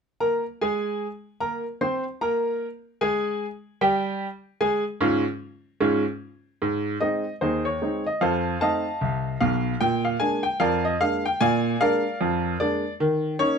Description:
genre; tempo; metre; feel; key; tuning
ragtime piano; 75 BPM; 2/4; swing 60% on 16ths; Ab major; A4 = 440 Hz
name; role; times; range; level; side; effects
clear baby grand piano; solo; 0.2-13.6 s; Cb2 to C6; -22 LUFS; equal; none
room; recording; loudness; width
light reverb; close, detailed microphones; -22 LUFS; side -6 dB against mid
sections
0.2-6.6 A section; 6.6-13.6 B section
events
none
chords
0.2 Ab; 3.4 Db; 6.6 Ab; 8.2 F7; 9.8 Bb7; 13.0 Eb7(no3)

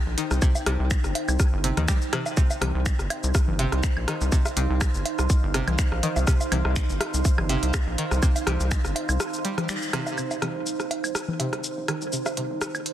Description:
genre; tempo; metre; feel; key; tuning
minimal techno; 123 BPM; 4/4; swing 54% on 16ths; C minor; A4 = 439 Hz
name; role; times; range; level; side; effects
deep dark ambient pad; texture; 0.0-12.9 s; Eb4 to G5; -31 LUFS; right 3 dB; chorus, built-in reverb, sidechain pumping
rubbery square bass; bass; 0.1-12.8 s; G1 to Eb2; -26 LUFS; equal; sidechain pumping, high-pass filter
string-like resonator pluck; riff; 0.2-12.4 s; C3 to G3; -32 LUFS; equal; chorus, sidechain pumping, digital delay
techno drum kit; drums; 0.2-12.9 s; finger snaps, hi-hat, shaker; -32 LUFS; equal; soft clipping on snare
electronic rim click, woodblock and congas; percussion; 0.3-12.8 s; none; -30 LUFS; left 1 dB; soft clipping on snare, digital delay
electronic kick drum; drums; 0.4-8.8 s; none; -22 LUFS; equal; overdrive
room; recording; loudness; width
light reverb; dense, heavily limited modern master; -22 LUFS; side -12 dB against mid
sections
0.0-10.2 A section; 10.2-12.9 B section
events
drop 0.0-10.2; break 9.2-10.2; band accent 9.7; filter sweep on synth pluck 10.2-12.9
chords
0.0 Cm

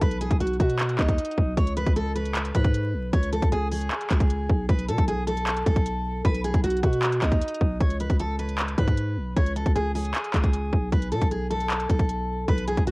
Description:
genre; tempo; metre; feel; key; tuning
hip hop, trap; 154 BPM; 4/4; half-time; unclear; A4 = 440 Hz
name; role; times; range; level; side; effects
picked steel-string acoustic guitar; melody; 0.0-12.9 s; D#4 to C#5; -28 LUFS; equal; cassette tape, tape echo
growling 808-style bass; bass; 0.0-12.9 s; B1 to B2; -27 LUFS; equal; none
trap drum kit; drums; 0.0-12.9 s; handclaps, hi-hat, kick drum; -23 LUFS; equal; cassette tape
room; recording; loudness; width
little or no reverb; home recording on cassette, vinyl crackle; -22 LUFS; side -25 dB against mid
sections
0.0-7.8 A section; 7.8-12.9 B section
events
none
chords
0.0 B; 1.6 C#5; 4.7 B7(no3); 7.8 C#5; 10.9 B7(no3)

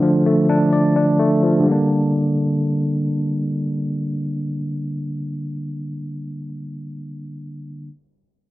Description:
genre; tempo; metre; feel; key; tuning
hip hop; 129 BPM; 4/4; half-time; G minor; A4 = 440 Hz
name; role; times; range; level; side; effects
bell-like tine electric piano; accompaniment; 0.0-7.9 s; D3 to D5; -18 LUFS; equal; medium stereo tremolo, cassette tape
room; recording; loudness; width
small room ambience; home recording on cassette, vinyl crackle, low-pass filter; -17 LUFS; side -17 dB against mid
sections
0.0-1.7 A section; 1.7-5.4 B section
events
none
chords
0.0 Dm; 1.7 Gm

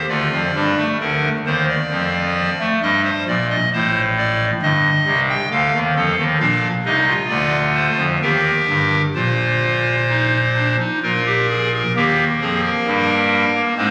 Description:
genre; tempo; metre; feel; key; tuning
classical, baroque-style 3-part fugue for pipe organ; 66 BPM; 3/4; straight; Eb major; A4 = 444 Hz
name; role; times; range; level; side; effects
pipe organ, clarinet reed; solo; 0.0-13.9 s; G1 to G5; -18 LUFS; equal; none
room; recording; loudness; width
wet church reverb, RT60 3.7 s; recorded on a phone in the room, club reverb, vinyl crackle; -18 LUFS; mono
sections
0.0-1.0 A section; 1.0-12.0 B section; 12.0-13.9 A section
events
none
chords
0.1 Dmadd11; 1.0 Bb/D; 2.8 Eb/G; 3.7 Am7b5; 5.5 Dm; 6.4 Bb; 8.2 Eb; 9.2 Eb5/Bb; 11.0 Bb5; 12.0 Eb

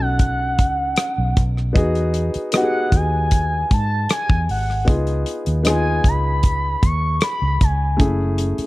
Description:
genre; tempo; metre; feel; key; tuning
lush 1970s-style soul; 77 BPM; 4/4; straight; unclear; A4 = 439 Hz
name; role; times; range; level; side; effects
expressive synth lead; melody; 0.0-8.0 s; F#5 to C#6; -23 LUFS; equal; chorus
warm grand piano; accompaniment; 0.0-8.7 s; A3 to A4; -24 LUFS; left 1 dB; none
vintage muted fingered electric bass; bass; 0.0-8.6 s; F#1 to G#2; -21 LUFS; equal; none
damped 70s drum kit; drums; 0.2-8.7 s; hi-hat, kick drum, rim click; -18 LUFS; equal; none
room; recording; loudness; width
small room ambience; dark, warm production; -16 LUFS; side -19 dB against mid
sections
0.0-8.7 A section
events
none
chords
0.0 B7; 1.8 Emaj7; 4.9 C#7; 8.0 F#m7

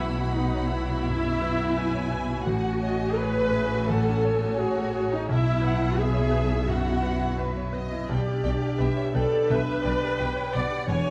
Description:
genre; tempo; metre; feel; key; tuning
cinematic, emotional film score for orchestra; 85 BPM; 4/4; rubato; unclear; A4 = 445 Hz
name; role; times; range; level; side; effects
warm studio violin section; melody; 0.0-11.0 s; E5 to B5; -43 LUFS; equal; none
warm studio violin section; second line; 0.0-11.1 s; B4 to G#5; -38 LUFS; equal; none
clear grand piano; accompaniment; 0.0-11.1 s; A1 to D5; -34 LUFS; equal; none
warm studio viola section; accompaniment; 0.0-11.1 s; D#4 to D5; -30 LUFS; equal; none
concert harp; arpeggios; 0.0-11.1 s; E2 to B4; -35 LUFS; equal; none
dark studio cello section; bass; 0.0-11.0 s; E2 to B2; -33 LUFS; equal; none
warm studio double bass section; bass; 0.0-11.0 s; E1 to B1; -33 LUFS; equal; none
room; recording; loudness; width
light reverb; close, detailed microphones, vinyl crackle; -26 LUFS; mono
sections
0.0-11.1 A section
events
none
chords
0.0 Bsus4; 2.5 F#madd9/A; 5.3 Bsus4; 8.1 G/B

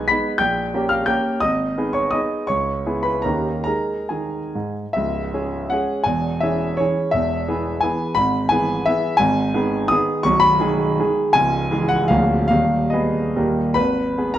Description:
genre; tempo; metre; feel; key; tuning
classical, romantic triple-time dance for piano with dotted rhythms; 130-188 BPM; 3/4; rubato; G# minor, C# minor from 5.0 s, G# minor from 9.2 s; A4 = 439 Hz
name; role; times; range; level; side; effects
warm concert grand piano; solo; 0.0-14.4 s; B0 to B6; -18 LUFS; equal; none
room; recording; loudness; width
moderate recital hall reverb, RT60 1.6 s; dark, warm production; -18 LUFS; side -12 dB against mid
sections
0.0-5.0 A section; 5.0-13.8 B section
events
none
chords
0.4 Gdim/Bb; 1.4 G#m; 2.5 C#m7; 3.3 D#7; 3.7 G#5; 5.0 C#m; 6.1 C#m/E; 7.1 E; 8.2 E/G#; 9.2 G#m; 10.3 G#m/B; 11.3 C#m; 12.1 A#7/D; 12.5 G#m/D#; 13.4 D#; 13.8 G#m

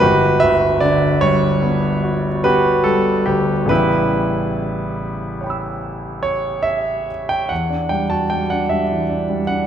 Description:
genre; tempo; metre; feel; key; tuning
classical, impressionist solo piano; 45-51 BPM (dotted quarters); 9/8; rubato; E dorian; A4 = 438 Hz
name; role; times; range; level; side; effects
clear concert grand piano; solo; 0.0-9.7 s; G1 to E6; -16 LUFS; right 1 dB; none
room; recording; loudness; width
wet recital hall reverb, RT60 1.6 s; none; -16 LUFS; side -9 dB against mid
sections
0.0-7.5 A section; 7.5-9.7 B section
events
none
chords
0.0 Gmaj7; 3.7 A9; 7.5 Em9

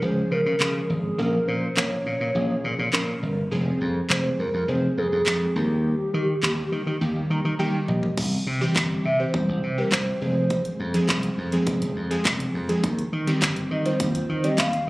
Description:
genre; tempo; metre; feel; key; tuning
dance-pop; 103 BPM; 4/4; straight; F minor; A4 = 439 Hz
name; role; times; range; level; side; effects
hollow clarinet-like synth lead; melody; 0.0-14.9 s; G4 to F5; -27 LUFS; equal; chorus, ping-pong delay
glassy digital keys; accompaniment; 0.0-14.9 s; Eb3 to Bb5; -27 LUFS; equal; chorus, tremolo, sidechain pumping
slap bass; bass; 0.0-14.9 s; F1 to Eb3; -26 LUFS; equal; sidechain pumping
pop drum kit; drums; 0.6-14.9 s; crash cymbal, handclaps, hi-hat, kick drum, toms; -25 LUFS; equal; none
room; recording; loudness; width
light reverb; recorded on a phone in the room, club reverb, compression; -21 LUFS; side -20 dB against mid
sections
0.0-8.2 A section; 8.2-14.9 B section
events
synth keys fill 7.0-8.2; drum fill 7.6-8.2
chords
0.0 Db; 1.2 Bbm; 3.5 Fm; 5.6 Eb; 8.2 C; 10.2 Fm; 12.8 Cm

